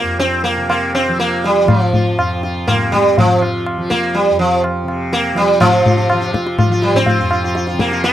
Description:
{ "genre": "indian classical, Hindustani", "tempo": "123 BPM", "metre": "4/4", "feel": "straight", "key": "unclear", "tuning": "A4 = 440 Hz", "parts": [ { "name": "sitar", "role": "melody", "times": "0.0-8.1 s", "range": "F3 to F4", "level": "-15 LUFS", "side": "right 1 dB", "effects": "none" }, { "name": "tanpura", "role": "drone", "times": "0.0-8.1 s", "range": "F2 to F3", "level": "-21 LUFS", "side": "equal", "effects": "none" }, { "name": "tabla", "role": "percussion", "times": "0.2-8.1 s", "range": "none", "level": "-17 LUFS", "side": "left 1 dB", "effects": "none" } ], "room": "light reverb", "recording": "dry, close 1970s-style studio recording", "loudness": "-13 LUFS", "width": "side -12 dB against mid", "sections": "0.0-5.6 A section; 5.6-8.1 B section", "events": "none", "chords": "none" }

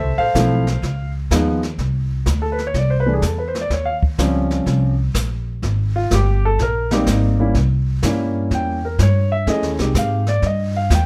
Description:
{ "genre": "jazz piano trio", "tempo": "125 BPM", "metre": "4/4", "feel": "swing 67% on 8ths", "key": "unclear", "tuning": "A4 = 441 Hz", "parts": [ { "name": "warm grand piano", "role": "melody", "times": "0.0-11.1 s", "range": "E3 to G5", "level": "-22 LUFS", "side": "equal", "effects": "none" }, { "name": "upright bass", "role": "bass", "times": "0.0-11.1 s", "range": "G1 to Ab2", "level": "-21 LUFS", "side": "equal", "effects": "none" }, { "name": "jazz brush drum kit", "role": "drums", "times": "0.3-11.1 s", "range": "brushed snare drum, hi-hat, kick drum, snare drum", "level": "-26 LUFS", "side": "equal", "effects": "none" } ], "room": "little or no reverb", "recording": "none", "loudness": "-19 LUFS", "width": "mono", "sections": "0.0-1.8 A section; 1.8-11.1 B section", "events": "grand piano solo 1.8-11.1", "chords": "0.0 Dm9 (rootless); 0.8 Db9; 1.8 C69; 3.7 Eb13; 5.6 Abmaj9; 7.5 C7b9; 9.5 Fm9" }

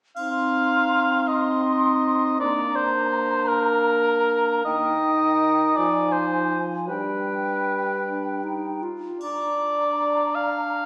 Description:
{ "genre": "classical, slow romantic movement for symphony orchestra", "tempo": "53 BPM (dotted quarters)", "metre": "6/8", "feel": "uneven beats, rubato", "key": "C minor", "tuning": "A4 = 440 Hz", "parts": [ { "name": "large flute ensemble", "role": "second line", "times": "0.2-10.9 s", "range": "G5 to C6", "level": "-28 LUFS", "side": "equal", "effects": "none" }, { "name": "warm clarinet", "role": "second line", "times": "0.2-9.2 s", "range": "D4 to F4", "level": "-28 LUFS", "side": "equal", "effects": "none" }, { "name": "warm cor anglais", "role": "second line", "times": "0.2-10.9 s", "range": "Bb4 to F5", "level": "-22 LUFS", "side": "equal", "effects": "none" }, { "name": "mellow French horn section", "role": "sustained chords", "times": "0.2-10.9 s", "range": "Eb3 to D4", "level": "-28 LUFS", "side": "equal", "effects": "none" }, { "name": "triangle", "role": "percussion", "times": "0.2-1.6, 9.2-10.7 s", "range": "none", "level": "-51 LUFS", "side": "equal", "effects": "none" } ], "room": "wet recital hall reverb, RT60 1.5 s", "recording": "small speaker sound", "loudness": "-20 LUFS", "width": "side -36 dB against mid", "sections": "0.2-10.9 A section", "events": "none", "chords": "0.2 Cm; 2.4 Bb; 4.7 Eb; 5.8 Fm7; 6.9 G; 9.2 Bb/D" }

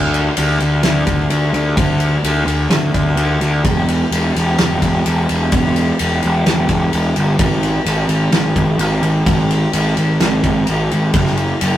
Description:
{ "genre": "rock, shoegaze and dream pop", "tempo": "128 BPM", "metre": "4/4", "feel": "straight", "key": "D lydian", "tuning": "A4 = 444 Hz", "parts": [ { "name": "fuzz picked electric bass", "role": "bass", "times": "0.0-11.8 s", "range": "E1 to D2", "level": "-15 LUFS", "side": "equal", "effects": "overdrive" }, { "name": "loose indie drum kit", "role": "drums", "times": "0.1-11.7 s", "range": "kick drum, ride cymbal, snare drum", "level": "-18 LUFS", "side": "equal", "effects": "none" } ], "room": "light reverb", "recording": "rough rehearsal-room recording, warm saturation", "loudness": "-13 LUFS", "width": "side -12 dB against mid", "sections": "0.0-11.8 A section", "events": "none", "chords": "none" }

